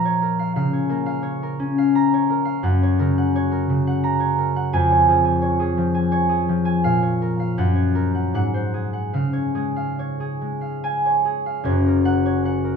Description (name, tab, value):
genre	classical, solo harp piece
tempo	69-88 BPM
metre	3/4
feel	rubato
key	Db major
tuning	A4 = 440 Hz
part	concert harp	solo	0.0-12.8 s	F#1 to Bb5	-18 LUFS	equal	none
room	moderate recital hall reverb, RT60 1.4 s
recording	close, detailed microphones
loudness	-18 LUFS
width	side -6 dB against mid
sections	0.0-11.7 A section; 11.7-12.8 B section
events	none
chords	0.0 Bbm; 0.6 Bbm/Db; 2.6 Gb; 4.7 Db/F; 6.8 Bbm; 7.6 Gb; 8.3 Ab7; 9.1 Db; 11.7 F#